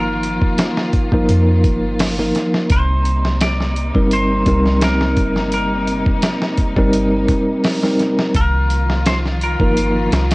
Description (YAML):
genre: trip hop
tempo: 85 BPM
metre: 4/4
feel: straight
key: C minor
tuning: A4 = 445 Hz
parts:
  - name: semi-hollow electric guitar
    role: melody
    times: 0.0-10.3 s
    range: Bb4 to D5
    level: -24 LUFS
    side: left 1 dB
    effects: tape echo
  - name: bell-like tine electric piano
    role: accompaniment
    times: 0.0-10.1 s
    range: F3 to Bb4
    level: -18 LUFS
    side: equal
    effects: tremolo, cassette tape
  - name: clear studio string section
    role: sustained chords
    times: 0.0-10.3 s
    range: C3 to F4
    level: -25 LUFS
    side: equal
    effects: vintage 12-bit sampler grit, cassette tape
  - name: soft 808-style bass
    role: bass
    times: 0.0-10.3 s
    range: G1 to F2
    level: -18 LUFS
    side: equal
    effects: transformer saturation
  - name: dusty soul sampler-style drum kit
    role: drums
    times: 0.2-10.3 s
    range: hi-hat, kick drum, snare drum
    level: -19 LUFS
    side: equal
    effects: none
room: light reverb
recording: home recording on cassette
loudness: -14 LUFS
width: side -22 dB against mid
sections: 0.0-10.3 A section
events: none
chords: 0.0 Bbsus4; 2.7 Cm7; 8.3 Bbsus4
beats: 0.58 1.29 2.00 | 2.70 3.41 4.11 4.82 | 5.53 6.23 6.94 7.64 | 8.35 9.05 9.76